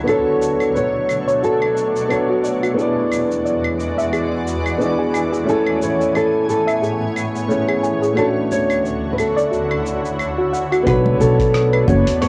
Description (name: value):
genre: sunset chillout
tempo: 89 BPM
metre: 4/4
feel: swing 56% on 16ths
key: unclear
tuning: A4 = 440 Hz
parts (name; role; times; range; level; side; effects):
- dark concert grand piano; accompaniment; 0.0-12.3 s; A3 to G#5; -24 LUFS; equal; cassette tape, analog delay
- shimmering ambient pad; sustained chords; 0.0-12.3 s; D2 to G#5; -26 LUFS; equal; chorus, built-in reverb, cassette tape
- soft round pluck; arpeggios; 0.0-12.3 s; F#4 to G#5; -26 LUFS; equal; chorus, cassette tape, analog delay
- nylon-string guitar; melody; 0.1-12.3 s; A4 to C#5; -22 LUFS; equal; cassette tape
- dusty soul sampler-style drum kit; drums; 0.1-12.3 s; claves, hi-hat, rim click, shaker; -30 LUFS; equal; small room ambience
- upright bass; bass; 10.9-12.3 s; F#1 to B1; -19 LUFS; equal; none
- electronic kick drum; drums; 10.9-12.0 s; none; -26 LUFS; equal; overdrive, small room ambience
- congas; percussion; 11.1-12.0 s; none; -27 LUFS; equal; none
room: wet studio reverb, RT60 0.5 s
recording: home recording on cassette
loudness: -18 LUFS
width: mono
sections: 0.0-10.9 A section; 10.9-12.3 B section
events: none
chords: 0.1 Bm9; 2.8 E7; 5.5 Amaj7; 8.2 Dmaj7; 10.9 Bm9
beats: | 0.08 0.75 1.43 2.10 | 2.78 3.45 4.12 4.80 | 5.47 6.15 6.82 7.50 | 8.17 8.84 9.52 10.19 | 10.87 11.54 12.21